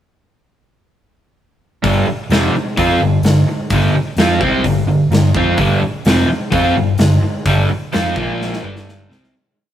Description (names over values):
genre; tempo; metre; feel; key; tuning
blues rock power trio and southern rock; 128 BPM; 4/4; straight; unclear; A4 = 437 Hz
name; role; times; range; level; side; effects
crunchy overdriven guitar; riff; 1.8-9.3 s; F2 to F4; -15 LUFS; equal; none
vintage muted fingered electric bass; bass; 1.8-9.3 s; F1 to F2; -20 LUFS; equal; none
big rock drum kit; drums; 1.8-9.3 s; hi-hat, kick drum, snare drum; -19 LUFS; equal; none
room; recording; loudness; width
moderate stone room reverb, RT60 1.2 s; rough rehearsal-room recording; -13 LUFS; side -10 dB against mid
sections
1.8-9.3 riff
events
fade-out 7.4-9.3; drum fill 8.4-9.3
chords
1.8 G5; 8.2 Bb5; 8.6 G5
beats
| 1.84 2.31 2.78 3.24 | 3.71 4.18 4.64 5.11 | 5.58 6.05 6.51 6.98 | 7.45 7.92 8.39 8.86